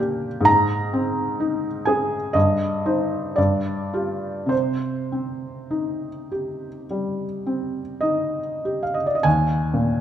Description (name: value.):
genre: classical, romantic nocturne for solo piano.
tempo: 44-66 BPM.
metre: 4/4.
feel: rubato.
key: C minor.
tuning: A4 = 440 Hz.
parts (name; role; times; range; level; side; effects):
felt-muted upright piano; solo; 0.0-10.0 s; Eb2 to Bb5; -20 LUFS; equal; none.
room: wet recital hall reverb, RT60 1.4 s.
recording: dark, warm production.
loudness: -20 LUFS.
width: side -10 dB against mid.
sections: 0.0-9.2 A section.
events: none.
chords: 0.5 Ab; 2.3 Cm/G; 3.4 G5; 4.5 Cm; 9.2 Eb5.